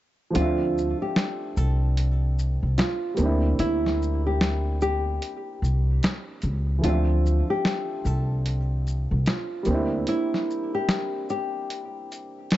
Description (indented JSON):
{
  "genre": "lo-fi hip hop",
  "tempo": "74 BPM",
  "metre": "4/4",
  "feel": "swing 62% on 16ths",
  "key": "D minor",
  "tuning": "A4 = 439 Hz",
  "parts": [
    { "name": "dark upright piano", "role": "accompaniment", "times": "0.3-12.6 s", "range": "E3 to E5", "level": "-30 LUFS", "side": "right 2 dB", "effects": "none" },
    { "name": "dusty soul sampler-style drum kit", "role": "drums", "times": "0.3-12.6 s", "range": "hi-hat, shaker, snare drum", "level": "-26 LUFS", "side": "equal", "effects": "none" },
    { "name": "nylon-string guitar", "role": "melody", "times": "0.4-12.6 s", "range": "E4 to A4", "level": "-28 LUFS", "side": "equal", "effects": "tape echo" },
    { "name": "upright bass", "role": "bass", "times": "0.4-10.0 s", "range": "C2 to D2", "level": "-23 LUFS", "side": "equal", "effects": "none" }
  ],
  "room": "light reverb",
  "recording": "dark, warm production, nothing above 7.8 kHz",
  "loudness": "-22 LUFS",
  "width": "side -14 dB against mid",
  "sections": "0.3-12.6 A section",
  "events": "kick muted 0.3-12.6; break 10.1-12.6",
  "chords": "0.3 Dm7; 3.2 C9/D; 6.8 Dm7; 9.7 C9/D"
}